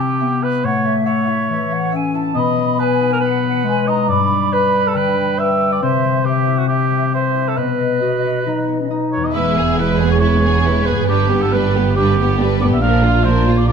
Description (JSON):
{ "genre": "cinematic, heroic adventure film score", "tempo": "138 BPM", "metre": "4/4", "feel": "straight", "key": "unclear", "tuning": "A4 = 441 Hz", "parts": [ { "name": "flute section", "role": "second line", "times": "0.0-9.1 s", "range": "D#5 to B5", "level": "-23 LUFS", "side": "right 3 dB", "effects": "none" }, { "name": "mellow clarinet", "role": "second line", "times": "0.0-9.3 s", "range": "G3 to F#4", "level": "-22 LUFS", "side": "left 2 dB", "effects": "none" }, { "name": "mellow cor anglais", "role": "second line", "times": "0.0-13.7 s", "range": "F#4 to E#5", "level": "-20 LUFS", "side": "right 3 dB", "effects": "none" }, { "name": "concert harp", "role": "arpeggios", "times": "0.0-13.7 s", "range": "E2 to E5", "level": "-21 LUFS", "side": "left 10 dB", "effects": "none" }, { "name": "warm symphonic violin section", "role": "melody", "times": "9.3-13.7 s", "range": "E#4 to B4", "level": "-24 LUFS", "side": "left 1 dB", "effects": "none" }, { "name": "rich symphonic violin section", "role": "second line", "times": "9.3-13.7 s", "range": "B3 to G#4", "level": "-25 LUFS", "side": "left 2 dB", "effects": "none" }, { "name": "mellow French horn section", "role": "sustained chords", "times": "9.3-13.7 s", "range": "B3 to G#4", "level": "-23 LUFS", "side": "left 3 dB", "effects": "none" }, { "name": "warm symphonic viola section", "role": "accompaniment", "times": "9.4-13.7 s", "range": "E#3 to B3", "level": "-22 LUFS", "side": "right 2 dB", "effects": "none" }, { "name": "warm symphonic cello section", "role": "bass", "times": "9.4-13.7 s", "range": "E2 to A#2", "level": "-19 LUFS", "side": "right 4 dB", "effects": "none" }, { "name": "warm symphonic double bass section", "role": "bass", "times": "9.4-13.7 s", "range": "E1 to A#1", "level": "-19 LUFS", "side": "right 5 dB", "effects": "none" } ], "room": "moderate scoring stage reverb, RT60 1.6 s", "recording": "close, detailed microphones", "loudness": "-14 LUFS", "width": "side -6 dB against mid", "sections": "0.0-9.3 A section; 9.3-13.7 B section", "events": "none", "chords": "0.0 C; 0.6 A; 2.4 B; 4.1 G; 5.8 C; 7.6 B; 9.3 E; 11.1 G; 12.8 A#" }